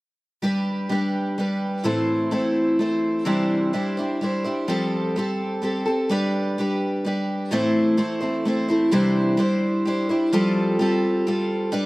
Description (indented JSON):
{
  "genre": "rock",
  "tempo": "128 BPM",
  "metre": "3/4",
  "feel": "straight",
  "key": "G major",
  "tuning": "A4 = 440 Hz",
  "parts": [
    { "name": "picked twelve-string acoustic guitar", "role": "solo", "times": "0.4-11.9 s", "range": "A2 to C5", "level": "-20 LUFS", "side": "equal", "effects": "none" }
  ],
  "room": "little or no reverb",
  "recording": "recorded outdoors, with no room sound",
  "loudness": "-20 LUFS",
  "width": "side -20 dB against mid",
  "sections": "0.4-6.1 A section; 6.1-11.9 B section",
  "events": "none",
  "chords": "0.4 G; 1.9 Am; 3.3 Cadd9; 4.7 Fadd9; 6.1 G; 7.5 Am; 8.9 Cadd9; 10.3 Fadd9"
}